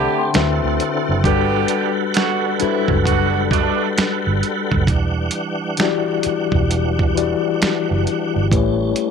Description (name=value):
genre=R&B, neo-soul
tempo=66 BPM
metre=4/4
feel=swing 62% on 16ths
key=E minor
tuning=A4 = 443 Hz
part: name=mellow tine electric piano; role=accompaniment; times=0.0-9.1 s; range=D3 to C6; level=-20 LUFS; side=left 11 dB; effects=medium stereo tremolo
part: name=tonewheel organ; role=sustained chords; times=0.0-9.1 s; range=D3 to F#5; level=-24 LUFS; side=right 2 dB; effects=slow rotary speaker, overdrive, chorus vibrato
part: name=clear horn section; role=stabs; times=0.0-3.9 s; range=B2 to G4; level=-22 LUFS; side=right 15 dB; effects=none
part: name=vintage muted fingered electric bass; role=bass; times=0.0-8.9 s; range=E1 to D2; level=-20 LUFS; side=right 2 dB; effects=none
part: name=dusty soul sampler-style drum kit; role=drums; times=0.3-9.1 s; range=finger snaps, hi-hat, kick drum, snare drum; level=-20 LUFS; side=right 2 dB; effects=none
room=light reverb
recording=1960s-style stereo with parts hard left and right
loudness=-16 LUFS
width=side -6 dB against mid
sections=0.0-9.1 A section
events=none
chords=0.3 D13; 4.9 Em9; 8.5 A7